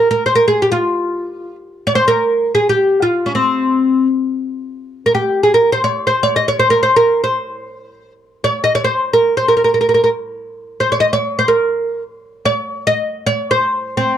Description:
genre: Persian modal ensemble.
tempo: free time.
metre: none.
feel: none.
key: C dastgah shur.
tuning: A4 = 440 Hz.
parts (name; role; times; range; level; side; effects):
oud; solo; 0.0-14.2 s; C4 to Eb5; -13 LUFS; equal; none.
room: light reverb.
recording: dark, warm production.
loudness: -13 LUFS.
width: side -10 dB against mid.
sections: 0.0-4.8 A section; 4.8-14.2 A section.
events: none.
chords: none.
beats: free time.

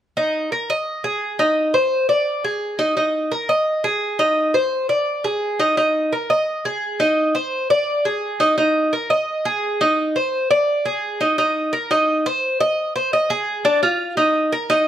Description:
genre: latin.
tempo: 171 BPM.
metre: 4/4.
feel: straight.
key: unclear.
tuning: A4 = 440 Hz.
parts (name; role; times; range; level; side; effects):
Cuban tres; solo; 0.2-14.9 s; D4 to Eb5; -17 LUFS; equal; none.
room: light reverb.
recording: none.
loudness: -17 LUFS.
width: side -10 dB against mid.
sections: 0.2-11.4 A section; 11.4-14.9 B section.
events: none.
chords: none.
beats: | 0.17 0.52 0.87 1.22 | 1.57 1.92 2.27 2.62 | 2.97 3.32 3.67 4.02 | 4.37 4.72 5.07 5.42 | 5.78 6.13 6.48 6.83 | 7.18 7.53 7.88 8.23 | 8.58 8.94 9.29 9.64 | 9.99 10.34 10.69 11.04 | 11.39 11.74 12.09 12.43 | 12.78 13.13 13.48 13.83 | 14.18 14.53 14.88.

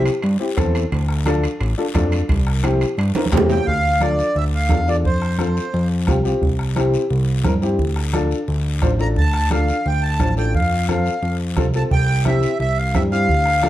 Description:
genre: latin, cumbia.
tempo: 175 BPM.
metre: 4/4.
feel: straight.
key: D minor.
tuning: A4 = 442 Hz.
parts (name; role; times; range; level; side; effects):
accordion; melody; 0.0, 3.5-5.9, 9.0-13.7 s; C5 to Bb5; -21 LUFS; right 1 dB; none.
warm upright piano; accompaniment; 0.0-13.7 s; C4 to C5; -23 LUFS; left 2 dB; none.
fat analog bass; bass; 0.0-13.7 s; A1 to G2; -20 LUFS; equal; none.
guiro; percussion; 0.1-13.7 s; none; -36 LUFS; left 7 dB; none.
timbales; percussion; 0.1-3.6 s; none; -28 LUFS; right 2 dB; none.
congas; percussion; 0.2-13.7 s; none; -27 LUFS; right 3 dB; none.
bombo; percussion; 0.6-13.7 s; none; -23 LUFS; right 1 dB; none.
room: moderate large studio reverb, RT60 1.1 s.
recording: dark, warm production.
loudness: -16 LUFS.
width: side -14 dB against mid.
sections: 0.0-3.7 A section; 3.7-13.7 B section.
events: drum fill 3.2-3.7.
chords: 0.0 C; 0.9 Dm; 2.3 C; 3.7 Dm; 5.0 F; 6.4 C; 7.8 Dm; 10.5 F; 11.9 C.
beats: 0.23 0.58 | 0.92 1.27 1.61 1.95 | 2.30 2.64 2.98 3.33 | 3.67 4.02 4.36 4.70 | 5.05 5.39 5.73 6.08 | 6.42 6.76 7.11 7.45 | 7.79 8.14 8.48 8.83 | 9.17 9.51 9.86 10.20 | 10.54 10.89 11.23 11.57 | 11.92 12.26 12.60 12.95 | 13.29 13.63.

